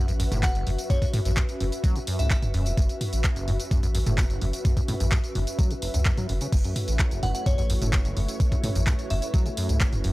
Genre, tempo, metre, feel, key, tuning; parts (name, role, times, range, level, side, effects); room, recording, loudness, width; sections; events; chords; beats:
acid house; 128 BPM; 4/4; straight; F# minor; A4 = 440 Hz
acid bass, saw; riff; 0.0-10.1 s; F#1 to F#3; -29 LUFS; equal; overdrive, analog chorus, sidechain pumping
ethereal airy pad; texture; 0.0-10.1 s; C#4 to E5; -35 LUFS; left 1 dB; ensemble chorus, built-in reverb, tremolo, sidechain pumping
warm sub bass; bass; 0.1-10.1 s; E1 to C#2; -27 LUFS; equal; sidechain pumping
punchy analog drum machine; drums; 0.1-10.1 s; crash cymbal, handclaps, hi-hat, tambourine, toms; -31 LUFS; equal; overdrive, small room ambience
glassy synth bell; melody; 0.4-2.4, 7.2-9.5 s; C#5 to F#5; -35 LUFS; left 1 dB; chorus, phaser, tape echo
electronic kick drum; drums; 0.4-9.9 s; -23 LUFS; equal; small room ambience
string machine, full ensemble; sustained chords; 6.7-10.1 s; A3 to C#5; -36 LUFS; equal; ensemble chorus, sidechain pumping
digital ambience; dry, gritty hardware recording; -22 LUFS; side -19 dB against mid
0.0-10.1 A section
0.0 F#m7
0.43 | 0.90 1.37 1.84 2.31 | 2.78 3.24 3.71 4.18 | 4.65 5.12 5.59 6.06 | 6.53 6.99 7.46 7.93 | 8.40 8.87 9.34 9.81